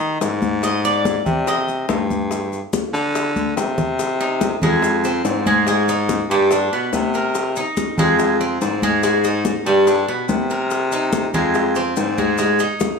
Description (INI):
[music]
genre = latin, Cuban son and guajira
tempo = 143 BPM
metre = 4/4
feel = straight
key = C minor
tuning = A4 = 440 Hz
[part]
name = Cuban tres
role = arpeggios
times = 0.0-13.0 s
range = G3 to Eb5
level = -19 LUFS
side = right 1 dB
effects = none
[part]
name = breathy baritone saxophone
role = bass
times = 0.0-12.7 s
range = F2 to Eb3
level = -21 LUFS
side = left 1 dB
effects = none
[part]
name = bongos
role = percussion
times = 0.0-13.0 s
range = none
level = -26 LUFS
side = left 7 dB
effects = none
[part]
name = congas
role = percussion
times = 0.0-13.0 s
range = none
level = -24 LUFS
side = left 2 dB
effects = none
[part]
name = maracas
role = percussion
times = 0.0-13.0 s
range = none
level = -35 LUFS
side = left 7 dB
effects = none
[sound]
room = moderate large studio reverb, RT60 1.2 s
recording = studio ambience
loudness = -16 LUFS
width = side -5 dB against mid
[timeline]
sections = 0.0-4.0 A section; 4.0-13.0 B section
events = Cuban tres solo 0.0-4.0; drum fill 3.4-4.0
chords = 0.0 Ab5; 0.6 Ab; 2.3 G5; 4.0 Cm; 4.8 Fm; 5.7 Ab5; 6.5 G; 7.3 Cm7; 8.2 Fm; 9.0 Ab5; 9.9 G; 10.7 Cm7; 11.5 Fm; 12.4 Ab5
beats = 0.22 | 0.64 1.06 1.48 1.90 | 2.31 2.73 3.15 3.57 | 3.99 4.41 4.83 5.25 | 5.67 6.09 6.51 6.93 | 7.35 7.77 8.19 8.61 | 9.03 9.45 9.87 10.29 | 10.71 11.13 11.54 11.96 | 12.38 12.80